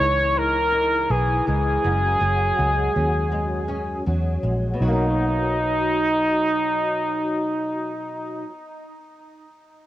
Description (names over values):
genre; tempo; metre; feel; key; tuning
indie pop, bedroom pop; 81 BPM; 4/4; swing 60% on 16ths; B major; A4 = 439 Hz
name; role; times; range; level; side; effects
warm trumpet; melody; 0.0-8.4 s; D#4 to C#5; -22 LUFS; equal; analog chorus, tape echo
flamenco guitar; accompaniment; 0.0-8.6 s; F#2 to D#4; -28 LUFS; left 2 dB; ensemble chorus, warbly pitch drift, cassette tape
vintage muted fingered electric bass; bass; 0.0-8.4 s; F#1 to E2; -24 LUFS; equal; none
room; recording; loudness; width
light reverb; home recording on cassette; -19 LUFS; side -14 dB against mid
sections
0.0-4.8 A section; 4.8-7.8 B section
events
none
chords
0.0 C#madd9; 1.8 F#sus2; 4.8 Bmaj7